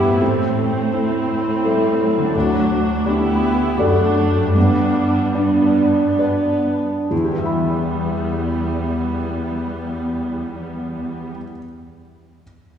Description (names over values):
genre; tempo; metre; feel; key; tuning
cinematic; 64-85 BPM; 3/4; rubato; E minor; A4 = 440 Hz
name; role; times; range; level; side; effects
wooden-headed alto flute; melody; 0.0-11.3 s; B3 to G4; -22 LUFS; right 1 dB; none
felt-muted upright piano; accompaniment; 0.0-12.4 s; D2 to B5; -23 LUFS; left 2 dB; none
rich studio viola section; accompaniment; 0.0-11.3 s; F#3 to E4; -23 LUFS; right 1 dB; none
concert harp; arpeggios; 0.0-11.6 s; E2 to B5; -28 LUFS; left 3 dB; none
rich studio cello section; bass; 0.0-11.3 s; D2 to A2; -24 LUFS; right 1 dB; none
room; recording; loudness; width
wet concert hall reverb, RT60 2.0 s; heard from further back in the room, small room ambience; -16 LUFS; side -8 dB against mid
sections
0.0-7.1 A section; 7.1-12.4 B section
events
slowing down 1.3-7.1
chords
0.2 Am; 2.3 D; 4.6 G; 7.1 Em